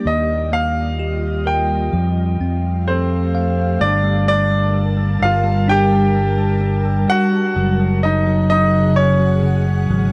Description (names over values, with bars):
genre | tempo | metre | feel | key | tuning
pop ballad | 64 BPM | 4/4 | straight | unclear | A4 = 442 Hz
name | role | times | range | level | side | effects
clear concert grand piano | melody | 0.0-10.1 s | C4 to G5 | -22 LUFS | equal | tape echo
bell-like tine electric piano | accompaniment | 0.0-10.1 s | Db3 to F5 | -23 LUFS | equal | none
ethereal airy pad | sustained chords | 0.1-10.1 s | Db3 to A5 | -27 LUFS | equal | ensemble chorus, built-in reverb
fingered electric bass | bass | 0.1-10.1 s | Gb1 to F2 | -21 LUFS | equal | none
room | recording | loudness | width
light reverb | none | -17 LUFS | mono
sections
0.0-3.8 A section; 3.8-10.1 B section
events
none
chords
0.1 Ebadd9; 1.9 Fadd9; 3.8 Gmadd9; 7.5 Gbsus2